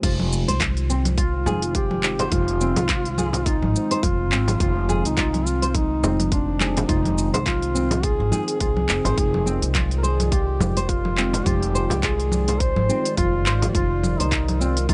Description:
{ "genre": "organic downtempo", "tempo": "105 BPM", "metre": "4/4", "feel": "swing 56% on 16ths", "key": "F dorian", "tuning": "A4 = 440 Hz", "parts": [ { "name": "muted felt-like synth keys", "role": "accompaniment", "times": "0.0-14.9 s", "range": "Ab3 to G5", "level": "-34 LUFS", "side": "equal", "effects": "chorus, sidechain pumping, digital delay" }, { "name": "warbly tape-like pad", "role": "sustained chords", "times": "0.8-14.9 s", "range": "Eb3 to D5", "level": "-35 LUFS", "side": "equal", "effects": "none" }, { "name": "nylon-string guitar", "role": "arpeggios", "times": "0.0-14.9 s", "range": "C4 to C5", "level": "-32 LUFS", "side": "equal", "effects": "digital delay" }, { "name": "upright bass", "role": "bass", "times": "0.0-14.9 s", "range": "F1 to C2", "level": "-26 LUFS", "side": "equal", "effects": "sidechain pumping" }, { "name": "electronic kick drum", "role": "drums", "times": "0.0-14.9 s", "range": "none", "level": "-26 LUFS", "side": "equal", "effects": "none" }, { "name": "organic electronic drum kit", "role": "drums", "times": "0.0-14.9 s", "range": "congas, crash cymbal, handclaps, hi-hat, shaker", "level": "-28 LUFS", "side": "equal", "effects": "none" }, { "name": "mellow duduk", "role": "melody", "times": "1.2-14.9 s", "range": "D4 to C5", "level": "-28 LUFS", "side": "equal", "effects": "digital delay" }, { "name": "frame drum", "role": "percussion", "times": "1.5-13.7 s", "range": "none", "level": "-30 LUFS", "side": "equal", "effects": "none" } ], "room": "little or no reverb", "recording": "nothing above 10.5 kHz", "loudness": "-21 LUFS", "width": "mono", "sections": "0.0-14.9 A section", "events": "none", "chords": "0.0 Fm7" }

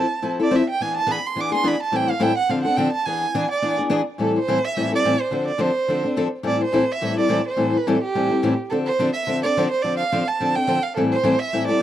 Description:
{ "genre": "jazz", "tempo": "213 BPM", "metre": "4/4", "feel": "swing 57% on 8ths", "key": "A minor", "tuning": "A4 = 439 Hz", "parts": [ { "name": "rich violin", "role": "melody", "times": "0.0-11.8 s", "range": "G4 to D6", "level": "-22 LUFS", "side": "right 4 dB", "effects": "none" }, { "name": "picked steel-string acoustic guitar", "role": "accompaniment", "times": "0.0-11.8 s", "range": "A2 to A4", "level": "-21 LUFS", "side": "left 2 dB", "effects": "none" } ], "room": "little or no reverb", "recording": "dry, close 1970s-style studio recording", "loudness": "-19 LUFS", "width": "side -11 dB against mid", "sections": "0.0-4.2 A section; 4.2-11.8 B section", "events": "violin solo 0.0-4.2", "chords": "0.0 Fmaj7; 0.8 E7; 1.9 Am7; 2.5 Dm7; 3.1 E7; 4.2 Am7; 5.3 Dm7; 6.5 Am7; 8.7 Dm7; 11.0 Am7" }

